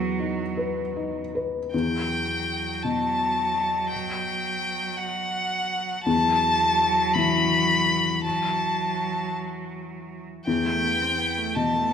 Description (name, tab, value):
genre	neoclassical piano and strings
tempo	55 BPM (dotted quarters)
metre	6/8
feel	rubato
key	E minor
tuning	A4 = 440 Hz
part	rich cello	second line	0.0-11.9 s	E3 to C4	-31 LUFS	right 6 dB	none
part	felt-muted upright piano	accompaniment	0.0-11.9 s	E2 to B4	-28 LUFS	left 4 dB	none
part	warm violin	melody	1.7-11.9 s	F#5 to B5	-23 LUFS	left 2 dB	none
room	wet recital hall reverb, RT60 1.6 s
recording	minimal, uncompressed stereo recording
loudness	-22 LUFS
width	side -8 dB against mid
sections	0.0-1.7 A section; 1.7-11.9 A section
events	none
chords	0.0 B/E; 1.7 Emadd9; 6.1 Esus24; 10.5 Asus2/E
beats	0.58 | 1.73 2.83 | 3.91 4.98 | 6.05 7.14 | 8.24 9.35 | 10.46 11.55